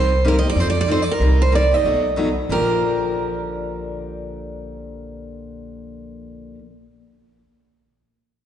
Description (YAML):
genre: acoustic string swing (jazz manouche)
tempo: 186 BPM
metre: 4/4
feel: swing 59% on 8ths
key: Bb major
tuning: A4 = 440 Hz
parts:
  - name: picked steel-string acoustic guitar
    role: melody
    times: 0.0-6.5 s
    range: Bb4 to Eb5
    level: -21 LUFS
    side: right 3 dB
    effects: none
  - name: picked steel-string acoustic guitar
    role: accompaniment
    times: 0.0-6.6 s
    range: Bb2 to A4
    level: -25 LUFS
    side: left 3 dB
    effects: none
  - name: upright bass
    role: bass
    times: 0.0-6.5 s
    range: Bb1 to F2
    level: -22 LUFS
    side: equal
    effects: none
room: moderate concert hall reverb, RT60 2.4 s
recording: recorded in a church or concert hall, nothing above 10.5 kHz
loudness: -17 LUFS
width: side -10 dB against mid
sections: 0.0-2.5 A section; 2.5-5.1 B section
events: none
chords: 0.0 Cm7; 0.6 F7; 1.2 Cm7; 1.8 B7; 2.5 Bb6